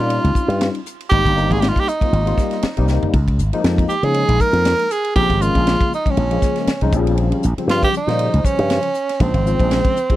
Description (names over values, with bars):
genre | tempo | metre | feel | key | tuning
electric jazz fusion | 119 BPM | 4/4 | swing 55% on 16ths | unclear | A4 = 440 Hz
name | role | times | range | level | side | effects
bright tenor saxophone | melody | 0.0-10.2 s | C4 to Bb4 | -20 LUFS | right 3 dB | none
barky tine electric piano | accompaniment | 0.0-10.2 s | Db3 to C5 | -22 LUFS | left 4 dB | ensemble chorus
slap bass with an envelope filter | bass | 0.0-9.8 s | G1 to Db3 | -18 LUFS | equal | none
tight funk drum kit | drums | 0.1-10.2 s | hi-hat, kick drum, ride cymbal, snare drum, toms | -20 LUFS | equal | none
room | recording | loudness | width
little or no reverb | dry, close 1970s-style studio recording | -15 LUFS | side -15 dB against mid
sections
0.0-10.2 A section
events
drum fill 2.9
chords
0.0 Eb13; 1.1 Abmaj9; 3.1 Db69; 5.2 Bbm7; 6.9 Eb13/Bb; 9.2 Bbm9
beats
0.10 0.61 | 1.11 1.62 2.13 2.63 | 3.14 3.65 4.15 4.66 | 5.16 5.67 6.17 6.68 | 7.18 7.69 8.19 8.70 | 9.20 9.71